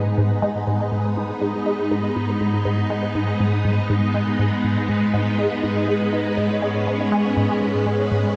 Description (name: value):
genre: ambient, sequencer-driven space music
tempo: 121 BPM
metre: 4/4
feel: straight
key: G# minor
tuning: A4 = 440 Hz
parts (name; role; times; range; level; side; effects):
- phased string machine; sustained chords; 0.0-8.4 s; G#2 to D#4; -24 LUFS; equal; ensemble chorus, phaser
- resonant blip pluck; riff; 0.0-8.3 s; G#2 to D#4; -24 LUFS; equal; phaser, subtle chorus, tape echo
- bubbling stepped-filter texture; texture; 0.0-8.4 s; B5; -42 LUFS; equal; none
room: wet cathedral reverb, RT60 5.9 s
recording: in a vast, echoing space, cassette tape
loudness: -21 LUFS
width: mono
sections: 0.0-8.4 A section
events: none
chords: 0.0 G#m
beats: | 0.42 0.92 1.42 1.91 | 2.41 2.90 3.40 3.90 | 4.39 4.89 5.38 5.88 | 6.38 6.87 7.37 7.86 | 8.36